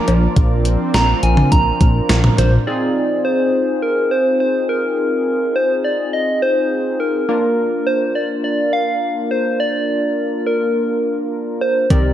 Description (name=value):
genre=synth-pop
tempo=104 BPM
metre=4/4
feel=straight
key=unclear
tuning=A4 = 440 Hz
part: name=soft struck synth lead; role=melody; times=0.0-12.1 s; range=Bb4 to Bb5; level=-18 LUFS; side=equal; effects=chorus, slapback echo
part: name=funky polysynth comp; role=accompaniment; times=0.0-12.1 s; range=Bb3 to Bb4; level=-21 LUFS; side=equal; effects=chorus
part: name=lush unison pad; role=sustained chords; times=0.0-2.6, 11.9-12.1 s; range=C3 to D5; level=-24 LUFS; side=equal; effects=chorus
part: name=chorused synth bass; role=bass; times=0.1-2.6, 11.9-12.1 s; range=Bb1 to C2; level=-16 LUFS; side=equal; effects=none
part: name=gated 80s digital drum machine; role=drums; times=0.1-2.5, 11.9-12.0 s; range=cowbell, hi-hat, kick drum, snare drum, toms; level=-16 LUFS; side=equal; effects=gated reverb, gated reverb snare
part: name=soft round pluck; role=arpeggios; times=11.9-12.1 s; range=Eb3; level=-23 LUFS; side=right 3 dB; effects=none
room=light reverb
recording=dark, warm production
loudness=-14 LUFS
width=side -11 dB against mid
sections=0.0-2.7 A section; 2.7-12.1 B section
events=none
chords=0.0 Bb; 2.7 Fm7; 7.3 Bb